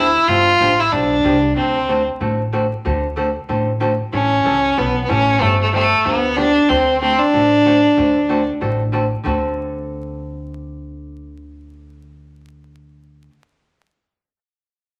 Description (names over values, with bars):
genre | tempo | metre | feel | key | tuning
country, western swing | 187 BPM | 4/4 | swing 62% on 8ths | D mixolydian | A4 = 440 Hz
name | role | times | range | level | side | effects
rich fiddle | melody | 0.0-2.0, 4.1-8.5 s | A3 to F4 | -17 LUFS | equal | none
archtop guitar, miked and amplified | accompaniment | 0.0-13.3 s | D3 to A4 | -24 LUFS | equal | none
upright bass | bass | 0.0-13.3 s | G1 to D2 | -27 LUFS | equal | none
room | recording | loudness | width
wet large studio reverb, RT60 0.9 s | vinyl crackle | -17 LUFS | mono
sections
0.0-9.2 A section; 9.2-11.8 B section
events
none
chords
0.0 G9; 1.6 D7; 4.1 A9; 5.4 G9; 6.7 D7